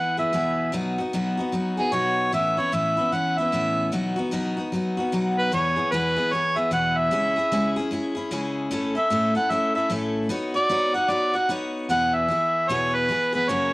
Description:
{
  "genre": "country",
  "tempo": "150 BPM",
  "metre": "4/4",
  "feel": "swing 62% on 8ths",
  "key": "E major",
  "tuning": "A4 = 440 Hz",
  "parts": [
    { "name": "mellow harmonica", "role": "melody", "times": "0.0-13.7 s", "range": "G#4 to F#5", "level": "-22 LUFS", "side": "right 1 dB", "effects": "cassette tape, plate reverb" },
    { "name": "picked steel-string acoustic guitar", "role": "accompaniment", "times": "0.0-13.7 s", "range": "E2 to C#5", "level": "-25 LUFS", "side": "left 1 dB", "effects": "cassette tape" }
  ],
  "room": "moderate small room reverb, RT60 0.6 s",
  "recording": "home recording on cassette",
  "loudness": "-21 LUFS",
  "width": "side -22 dB against mid",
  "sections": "0.0-11.9 A section; 11.9-13.7 B section",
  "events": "harmonica solo 0.0-11.9",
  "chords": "0.0 E; 0.7 B; 2.3 Aadd9; 3.9 B; 5.5 E; 7.1 C#m; 8.7 A; 10.3 Badd9; 11.9 E"
}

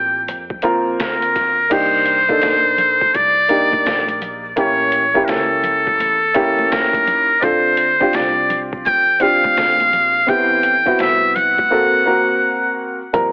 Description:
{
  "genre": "hip hop, jazz-hop",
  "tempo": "84 BPM",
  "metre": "4/4",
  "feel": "swing 64% on 16ths",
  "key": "unclear",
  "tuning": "A4 = 440 Hz",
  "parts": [
    { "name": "trumpet with metal mute", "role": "melody", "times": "0.0-12.8 s", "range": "A4 to G5", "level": "-14 LUFS", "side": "equal", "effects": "analog delay" },
    { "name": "warm grand piano", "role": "accompaniment", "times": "0.0-13.3 s", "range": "F3 to Bb4", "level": "-19 LUFS", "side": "equal", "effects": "plate reverb" },
    { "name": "upright bass", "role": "bass", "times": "0.0-13.3 s", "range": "G1 to F2", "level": "-35 LUFS", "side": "equal", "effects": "none" },
    { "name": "trip hop sampler-style drum kit", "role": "drums", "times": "0.3-13.3 s", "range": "crash cymbal, hi-hat, kick drum, snare drum", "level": "-25 LUFS", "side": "equal", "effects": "none" },
    { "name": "egg shaker and congas", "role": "percussion", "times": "1.7-13.3 s", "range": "none", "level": "-33 LUFS", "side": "left 1 dB", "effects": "none" }
  ],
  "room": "moderate studio reverb, RT60 0.6 s",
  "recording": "heavily compressed radio sound, vinyl crackle, telephone sound",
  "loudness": "-13 LUFS",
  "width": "side -27 dB against mid",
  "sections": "0.0-1.7 A section; 1.7-13.1 B section",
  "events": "drums muted 11.7-13.1",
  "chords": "0.0 Gm11; 1.7 Cm9; 4.6 A7b9; 7.4 Dm7; 10.3 Am9; 11.7 F#/A#"
}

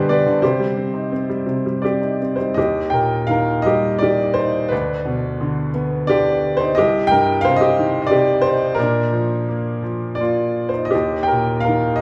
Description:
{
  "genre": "classical, lyrical solo piano",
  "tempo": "80-90 BPM",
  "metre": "3/4",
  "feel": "rubato",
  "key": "Eb major",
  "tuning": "A4 = 443 Hz",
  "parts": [
    { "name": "clear upright piano", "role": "solo", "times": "0.0-12.0 s", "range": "C2 to G5", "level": "-19 LUFS", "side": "equal", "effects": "none" }
  ],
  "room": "wet recital hall reverb, RT60 1.5 s",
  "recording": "recorded in a church or concert hall",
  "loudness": "-19 LUFS",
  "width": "mono",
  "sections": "0.0-2.6 A section; 2.6-12.0 B section",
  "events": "none",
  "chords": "0.4 Cm; 2.6 Eb; 4.7 G/D; 6.8 Cm; 8.8 Bb; 10.9 Eb"
}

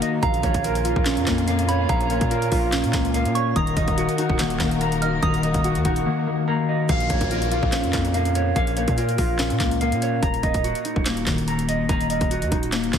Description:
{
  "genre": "hip hop, trap",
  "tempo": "144 BPM",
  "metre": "4/4",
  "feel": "half-time",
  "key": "Bb minor",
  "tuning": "A4 = 439 Hz",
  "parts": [
    { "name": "concert harp", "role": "accompaniment", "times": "0.0-13.0 s", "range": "Bb2 to Gb4", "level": "-26 LUFS", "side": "left 4 dB", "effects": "low-pass filter" },
    { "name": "dark symphonic string section", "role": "sustained chords", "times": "0.0-6.9 s", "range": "Eb3 to Bb4", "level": "-32 LUFS", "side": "left 1 dB", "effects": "none" },
    { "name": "mellow electric guitar", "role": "arpeggios", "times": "0.0-13.0 s", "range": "Eb3 to Bb5", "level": "-24 LUFS", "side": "right 1 dB", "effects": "lush chorus, low-pass filter, tape echo" },
    { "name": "trap drum kit", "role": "drums", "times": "0.0-13.0 s", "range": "handclaps, hi-hat, kick drum, snare drum", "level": "-25 LUFS", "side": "equal", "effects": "none" },
    { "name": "soft synth bell", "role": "second line", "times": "0.2-6.4 s", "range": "Bb5 to F6", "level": "-30 LUFS", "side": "right 4 dB", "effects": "chorus, tape echo" },
    { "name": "distorted 808-style bass", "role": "bass", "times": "0.2-13.0 s", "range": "Eb1 to Bb2", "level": "-26 LUFS", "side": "equal", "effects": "distortion" },
    { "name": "downlifter", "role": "sound effects", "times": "6.9-10.2 s", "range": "none", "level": "-35 LUFS", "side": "right 1 dB", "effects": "none" }
  ],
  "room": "light reverb",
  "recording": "heavily compressed radio sound",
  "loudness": "-19 LUFS",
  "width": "side -8 dB against mid",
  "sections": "0.0-6.9 A section; 6.9-13.0 B section",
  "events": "drums muted 6.1-6.9",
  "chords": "0.2 Bbm; 3.6 Ebm; 6.9 Bbm; 10.2 Ebm"
}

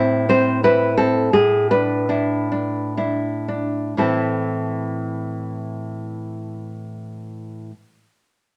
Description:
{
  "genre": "romantic piece for solo classical guitar",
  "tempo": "55-89 BPM",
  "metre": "3/4",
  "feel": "rubato",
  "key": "A minor",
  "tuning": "A4 = 440 Hz",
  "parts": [
    { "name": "nylon-string guitar", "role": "solo", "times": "0.0-7.7 s", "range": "A2 to C5", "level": "-21 LUFS", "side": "equal", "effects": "none" }
  ],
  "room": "moderate studio reverb, RT60 0.8 s",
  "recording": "none",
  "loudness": "-20 LUFS",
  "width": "mono",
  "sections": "0.0-4.0 A section; 4.0-8.6 B section",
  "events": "slowing down 0.0-4.0",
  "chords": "0.0 Am; 1.3 E5/A; 4.0 Am"
}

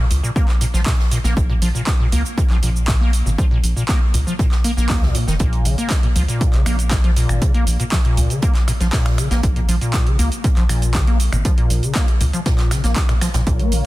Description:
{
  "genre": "acid house",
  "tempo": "119 BPM",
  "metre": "4/4",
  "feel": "straight",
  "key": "Bb minor pentatonic",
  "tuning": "A4 = 443 Hz",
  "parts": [
    { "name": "acid bass, square", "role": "riff", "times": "0.0-13.8 s", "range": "Ab2 to Bb3", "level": "-23 LUFS", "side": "left 1 dB", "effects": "overdrive, lush chorus, sidechain pumping, analog delay" },
    { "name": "round analog bass", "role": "bass", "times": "0.1-13.8 s", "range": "F1 to Bb2", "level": "-19 LUFS", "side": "equal", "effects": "sidechain pumping" },
    { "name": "jazz brush drum kit", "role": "drums", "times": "0.1-13.8 s", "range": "hi-hat, snare drum", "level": "-35 LUFS", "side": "right 2 dB", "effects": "none" },
    { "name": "punchy analog drum machine", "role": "drums", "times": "0.1-13.8 s", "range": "finger snaps, handclaps, hi-hat, shaker", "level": "-26 LUFS", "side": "right 2 dB", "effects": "overdrive" },
    { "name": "electronic kick drum", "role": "drums", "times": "0.4-13.6 s", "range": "none", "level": "-18 LUFS", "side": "equal", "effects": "overdrive" },
    { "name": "lush unison pad", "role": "sustained chords", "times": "13.6-13.9 s", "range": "Bb3 to F5", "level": "-26 LUFS", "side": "left 4 dB", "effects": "chorus, phaser, vintage 12-bit sampler grit, sidechain pumping" }
  ],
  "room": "digital ambience",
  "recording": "dense, heavily limited modern master",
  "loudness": "-15 LUFS",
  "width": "side -18 dB against mid",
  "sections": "0.0-13.9 A section",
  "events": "none",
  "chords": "0.0 Bbm"
}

